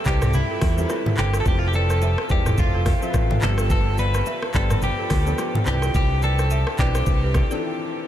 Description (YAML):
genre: afrobeats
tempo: 107 BPM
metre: 4/4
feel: swing 58% on 16ths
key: C major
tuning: A4 = 441 Hz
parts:
  - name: direct-recorded clean electric guitar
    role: melody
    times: 0.0-7.6 s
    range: E4 to B4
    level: -26 LUFS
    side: equal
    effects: wide subtle chorus, diffuse ambient delay
  - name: clear grand piano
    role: accompaniment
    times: 0.0-8.1 s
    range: Eb3 to E5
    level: -30 LUFS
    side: left 5 dB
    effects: none
  - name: balafon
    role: riff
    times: 0.1-7.6 s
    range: F4 to E5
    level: -31 LUFS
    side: right 7 dB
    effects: diffuse ambient delay
  - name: fingered electric bass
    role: bass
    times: 0.1-7.4 s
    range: E1 to E2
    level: -22 LUFS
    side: equal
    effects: none
  - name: afro-pop drum kit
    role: drums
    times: 0.1-7.6 s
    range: handclaps, hi-hat, kick drum, rim click, shaker, toms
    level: -23 LUFS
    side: equal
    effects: none
  - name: bongos and congas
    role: percussion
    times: 0.2-7.5 s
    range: none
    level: -32 LUFS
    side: left 1 dB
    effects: none
room: light reverb, digital ambience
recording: none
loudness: -18 LUFS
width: side -11 dB against mid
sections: 0.0-8.1 A section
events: break 7.6-8.1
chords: 0.0 Am7; 1.5 Fmaj7; 3.4 G7; 5.7 Cmaj9